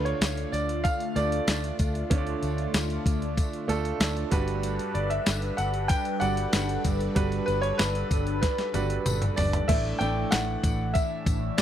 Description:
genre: 1980s-style pop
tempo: 95 BPM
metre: 4/4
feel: straight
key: unclear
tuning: A4 = 440 Hz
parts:
  - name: clear concert grand piano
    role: melody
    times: 0.0-11.6 s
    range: B4 to G5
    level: -30 LUFS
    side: equal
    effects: none
  - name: clear baby grand piano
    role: accompaniment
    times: 0.0-11.6 s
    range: G2 to F5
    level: -32 LUFS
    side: right 5 dB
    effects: none
  - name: phased analog pad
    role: sustained chords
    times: 0.1-11.6 s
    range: E3 to B4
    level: -34 LUFS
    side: left 2 dB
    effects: phaser, chorus
  - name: vintage muted fingered electric bass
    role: bass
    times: 0.0-11.6 s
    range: G1 to D2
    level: -30 LUFS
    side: equal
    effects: none
  - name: clean 12-bit digital drum machine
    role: drums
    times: 0.1-11.6 s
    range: crash cymbal, hi-hat, kick drum, snare drum, tambourine, toms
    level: -27 LUFS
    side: equal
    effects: none
  - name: tambourine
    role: percussion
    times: 0.2-11.6 s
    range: none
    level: -44 LUFS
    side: left 9 dB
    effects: none
room: digital ambience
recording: dry, close 1970s-style studio recording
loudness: -24 LUFS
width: side -10 dB against mid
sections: 0.0-9.7 A section; 9.7-11.6 B section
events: drum fill 8.4-9.7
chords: 0.0 Dm; 4.3 Gmaj7; 9.7 Asus4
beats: 0.21 0.85 1.48 | 2.11 2.74 3.37 4.00 | 4.64 5.27 5.90 6.53 | 7.16 7.79 8.43 9.06 | 9.69 10.32 10.95 11.58

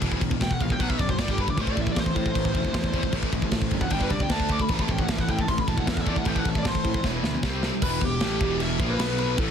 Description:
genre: heavy metal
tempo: 154 BPM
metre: 4/4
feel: straight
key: E minor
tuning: A4 = 440 Hz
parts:
  - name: high-gain distorted guitar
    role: riff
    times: 0.0-9.5 s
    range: E2 to D4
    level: -32 LUFS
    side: left 14 dB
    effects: distortion
  - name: sludgy distorted guitar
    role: riff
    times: 0.0-9.5 s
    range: E2 to D4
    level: -31 LUFS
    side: right 12 dB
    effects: overdrive
  - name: fuzz picked electric bass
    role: bass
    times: 0.0-9.5 s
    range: E1 to A2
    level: -30 LUFS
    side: equal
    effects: overdrive
  - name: tight metal drum kit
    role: drums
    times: 0.0-9.5 s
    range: crash cymbal, kick drum, snare drum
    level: -27 LUFS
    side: equal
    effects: none
  - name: high-gain lead guitar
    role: melody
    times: 0.4-9.5 s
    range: G4 to D6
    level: -30 LUFS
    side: left 1 dB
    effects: distortion, ping-pong delay
  - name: biting overdriven guitar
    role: riff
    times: 1.6-9.5 s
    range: E2 to D5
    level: -33 LUFS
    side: equal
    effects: none
room: little or no reverb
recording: dense, heavily limited modern master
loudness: -22 LUFS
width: side -8 dB against mid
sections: 0.0-7.8 A section; 7.8-9.5 B section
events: lead electric guitar solo 0.0-7.8; drum fill 7.0-7.8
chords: 0.0 E5; 0.8 B5; 1.2 G5; 1.6 Am; 3.9 G5; 4.3 D5; 4.7 Am; 7.0 E5; 7.4 C5; 7.8 Em; 9.0 B5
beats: | 0.02 0.41 0.80 1.19 | 1.58 1.97 2.36 2.75 | 3.14 3.53 3.92 4.31 | 4.70 5.09 5.48 5.87 | 6.26 6.66 7.05 7.44 | 7.83 8.22 8.61 9.00 | 9.39

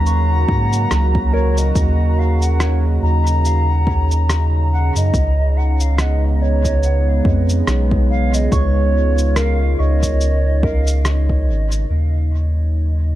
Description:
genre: ambient dub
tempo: 71 BPM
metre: 4/4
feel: swing 57% on 16ths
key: Eb minor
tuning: A4 = 440 Hz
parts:
  - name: mellow hollow silver concert flute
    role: melody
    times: 0.0-11.5 s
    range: Db5 to Bb5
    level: -24 LUFS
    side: right 1 dB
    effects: tape echo
  - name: warm analog pad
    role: sustained chords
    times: 0.0-13.2 s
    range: Db3 to Gb4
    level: -24 LUFS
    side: right 1 dB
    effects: chorus
  - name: soft synth bell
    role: arpeggios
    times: 0.0-11.9 s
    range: Bb4 to Db6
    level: -30 LUFS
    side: right 1 dB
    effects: chorus, low-pass filter, tape echo
  - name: soft dub sub bass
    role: bass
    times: 0.0-13.2 s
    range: Ab1 to Ab2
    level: -16 LUFS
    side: equal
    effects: none
  - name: electronic cabasa and rim click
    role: drums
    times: 0.1-11.9 s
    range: none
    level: -24 LUFS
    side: equal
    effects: low-pass filter on snare, low-pass filter on perc, dub echo
  - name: electronic kick drum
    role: drums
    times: 0.5-11.4 s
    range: none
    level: -20 LUFS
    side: equal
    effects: overdrive
room: light reverb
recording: echo-heavy mix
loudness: -14 LUFS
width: side -14 dB against mid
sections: 0.0-11.9 A section; 11.9-13.2 B section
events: none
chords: 0.0 Ebm7; 5.1 Db9; 11.9 Ebm7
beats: 0.07 0.91 | 1.75 2.60 3.44 4.29 | 5.13 5.98 6.83 7.67 | 8.52 9.36 10.21 11.05 | 11.90 12.74

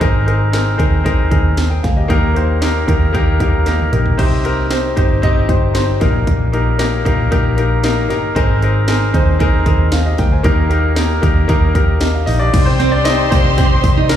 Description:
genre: piano-driven pop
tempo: 115 BPM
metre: 4/4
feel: straight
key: Eb major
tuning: A4 = 440 Hz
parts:
  - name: clear concert grand piano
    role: accompaniment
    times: 0.0-14.2 s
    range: Ab2 to Ab5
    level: -17 LUFS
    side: left 2 dB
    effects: slapback echo
  - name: vintage muted fingered electric bass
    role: bass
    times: 0.0-14.2 s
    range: G1 to Eb2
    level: -16 LUFS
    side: equal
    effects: none
  - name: house drum kit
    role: drums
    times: 0.0-14.2 s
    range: crash cymbal, hi-hat, kick drum, snare drum, toms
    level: -17 LUFS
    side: right 1 dB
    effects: none
  - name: rich studio violin section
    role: second line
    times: 12.5-14.2 s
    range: C5 to C6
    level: -20 LUFS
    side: right 1 dB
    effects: slapback echo
  - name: warm studio string section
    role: sustained chords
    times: 12.5-14.2 s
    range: Eb3 to G4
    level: -23 LUFS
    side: left 3 dB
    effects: none
  - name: fingerpicked steel-string acoustic guitar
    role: riff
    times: 12.8-14.1 s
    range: Bb3 to Eb4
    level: -20 LUFS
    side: right 9 dB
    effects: none
room: small room ambience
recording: live gig heard through the venue's PA, club reverb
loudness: -12 LUFS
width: side -10 dB against mid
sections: 0.0-12.5 A section; 12.5-14.2 B section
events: drum fill 3.7-4.2; grand piano solo 12.5-14.2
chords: 0.0 Abadd9; 2.1 Eb; 4.2 Cm; 6.0 Eb/Bb; 8.4 Abadd9; 10.4 Eb; 12.5 Cm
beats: | 0.01 0.53 1.05 1.58 | 2.10 2.62 3.14 3.66 | 4.19 4.71 5.23 5.75 | 6.27 6.80 7.32 7.84 | 8.36 8.88 9.40 9.93 | 10.45 10.97 11.49 12.02 | 12.54 13.06 13.58 14.10

